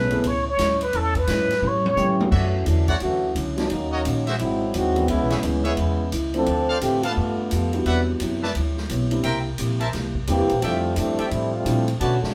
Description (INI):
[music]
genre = jazz, big band swing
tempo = 173 BPM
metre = 4/4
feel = swing 64% on 8ths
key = unclear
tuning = A4 = 440 Hz
[part]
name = trumpet with plunger mute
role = melody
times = 0.0-2.2 s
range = A4 to C#5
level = -24 LUFS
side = equal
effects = none
[part]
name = fingerpicked plugged-in steel-string acoustic guitar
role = accompaniment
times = 0.0-12.2 s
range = G#2 to C#5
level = -32 LUFS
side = equal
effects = none
[part]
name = warm grand piano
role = accompaniment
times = 0.0-11.9 s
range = E3 to G#4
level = -29 LUFS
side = equal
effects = none
[part]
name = upright bass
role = bass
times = 0.0-12.3 s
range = G#1 to C#3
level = -28 LUFS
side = equal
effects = none
[part]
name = swinging big-band drum kit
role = drums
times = 0.1-12.3 s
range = crash cymbal, hi-hat, kick drum, ride cymbal, snare drum, toms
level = -32 LUFS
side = equal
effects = none
[part]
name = warm trombone section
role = second line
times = 2.0-7.7, 10.3-12.3 s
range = C#3 to A4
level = -26 LUFS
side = equal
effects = none
[part]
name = clear trumpet section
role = stabs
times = 2.3-12.2 s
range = F#4 to A5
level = -31 LUFS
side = equal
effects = none
[sound]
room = wet studio reverb, RT60 0.6 s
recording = band playing live in one room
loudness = -22 LUFS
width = mono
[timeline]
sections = 0.0-2.3 A section; 2.3-12.3 B section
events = muted trumpet solo 0.0-2.3; drum fill 1.6-2.3; trombone section solo 2.3-12.3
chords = 0.0 Amaj7; 1.6 A7; 2.3 Dmaj9; 3.7 D#m7; 4.4 G#7b13; 5.1 C#m7; 6.5 Dm7; 7.2 G9; 7.9 Cmaj9#11; 9.2 C7; 10.6 Fmaj13